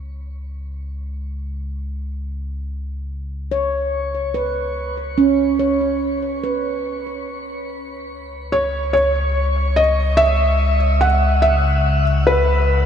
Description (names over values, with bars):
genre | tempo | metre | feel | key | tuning
ambient | 72 BPM | 3/4 | straight | unclear | A4 = 440 Hz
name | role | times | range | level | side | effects
deep rumbling drone | bass | 0.0-12.9 s | C#2 | -21 LUFS | left 1 dB | built-in reverb
handpan | arpeggios | 3.5-9.0 s | C#4 to C#5 | -20 LUFS | right 3 dB | ping-pong delay
felt-muted upright piano | melody | 8.5-12.9 s | B4 to F#5 | -16 LUFS | equal | ping-pong delay
room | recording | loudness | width
moderate shimmer reverb, RT60 8.1 s | dark, warm production | -16 LUFS | side -8 dB against mid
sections
0.0-12.9 A section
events
fade-in on handpan 0.0-12.9; fade-in on synth drone 0.0-12.9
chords
0.0 Bsus2/C#